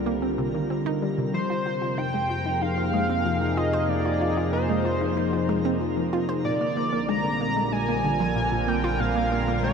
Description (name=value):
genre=ambient, sequencer-driven space music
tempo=94 BPM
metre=4/4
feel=straight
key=unclear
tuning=A4 = 439 Hz
part: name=sweeping resonant pad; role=sustained chords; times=0.0-9.7 s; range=C3 to Bb4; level=-27 LUFS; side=left 1 dB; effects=chorus, shimmer reverb
part: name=analog drone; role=bass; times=0.0-9.7 s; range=Bb1 to F2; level=-31 LUFS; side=left 1 dB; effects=chorus
part: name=twinkling granular texture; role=texture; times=0.0-9.7 s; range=Bb4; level=-39 LUFS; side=right 2 dB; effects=built-in reverb, shimmer reverb
part: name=hollow square pluck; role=riff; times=0.1-9.7 s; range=Bb2 to C5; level=-29 LUFS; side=right 1 dB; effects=chorus, phaser, shimmer reverb, ping-pong delay
part: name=pulse-width lead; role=melody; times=1.3-9.7 s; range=C5 to Bb5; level=-27 LUFS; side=equal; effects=chorus, shimmer reverb, ping-pong delay
room=wet huge ambient reverb, RT60 7.3 s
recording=none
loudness=-22 LUFS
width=side -6 dB against mid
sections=0.0-9.7 A section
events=none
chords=0.0 Cm7; 1.3 Fmadd9; 6.4 Bb7